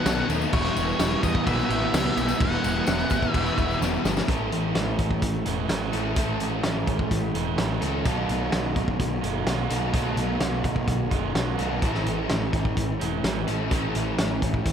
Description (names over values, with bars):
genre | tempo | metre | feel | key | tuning
rock, shoegaze and dream pop | 127 BPM | 4/4 | straight | A lydian | A4 = 440 Hz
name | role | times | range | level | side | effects
octave-fuzz lead guitar | melody | 0.0-3.8 s | C#5 to F#5 | -30 LUFS | equal | distortion, analog delay
direct-recorded clean electric guitar | arpeggios | 0.0-14.7 s | E3 to F#4 | -35 LUFS | right 8 dB | analog chorus, analog delay
crunchy overdriven guitar | riff | 0.0-14.7 s | E2 to F#4 | -30 LUFS | right 11 dB | reverse reverb
distorted electric guitar | riff | 0.0-4.3 s | E2 to B3 | -30 LUFS | equal | overdrive
overdriven semi-hollow guitar | riff | 0.0-14.7 s | A2 to A4 | -30 LUFS | left 9 dB | analog chorus
fuzz picked electric bass | bass | 0.1-14.7 s | E1 to E2 | -29 LUFS | equal | overdrive
loose indie drum kit | drums | 0.1-14.7 s | crash cymbal, hi-hat, kick drum, snare drum | -27 LUFS | equal | none
tambourine | percussion | 0.1-4.3 s | none | -42 LUFS | left 16 dB | none
room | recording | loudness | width
moderate recital hall reverb, RT60 1.4 s, small room reverb | none | -22 LUFS | side -8 dB against mid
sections
0.0-4.3 A section; 4.3-14.7 A section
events
drum fill 3.8-4.3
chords
0.0 B7; 0.5 Emadd9; 4.3 A; 8.1 B7; 11.8 A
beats
0.06 | 0.53 1.00 1.47 1.94 | 2.41 2.88 3.35 3.81 | 4.29 4.76 5.23 5.70 | 6.17 6.64 7.11 7.58 | 8.05 8.53 9.00 9.47 | 9.94 10.41 10.88 11.36 | 11.83 12.30 12.77 13.24 | 13.72 14.19 14.66